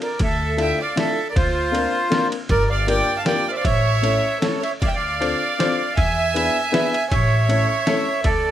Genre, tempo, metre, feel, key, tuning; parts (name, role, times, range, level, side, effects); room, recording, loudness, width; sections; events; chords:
musette waltz; 157 BPM; 3/4; rubato; D minor; A4 = 441 Hz
accordion; melody; 0.0-8.5 s; F4 to A5; -21 LUFS; right 2 dB
warm violin; second line; 0.0-8.5 s; F4 to F5; -28 LUFS; right 4 dB
boom bap sampler-style drum kit; drums; 0.0-8.3 s; kick drum, ride cymbal, snare drum; -25 LUFS; equal
upright bass; bass; 0.2-8.5 s; G1 to E2; -22 LUFS; equal
warm upright piano; accompaniment; 0.6-8.1 s; A3 to C#5; -24 LUFS; left 4 dB
little or no reverb; close, detailed microphones; -17 LUFS; side -11 dB against mid
0.2-8.5 A section
0.2 Dmadd9; 1.4 Bbadd9/D; 2.5 Gm7; 3.6 A; 4.8 Dm7; 6.0 E7; 7.1 A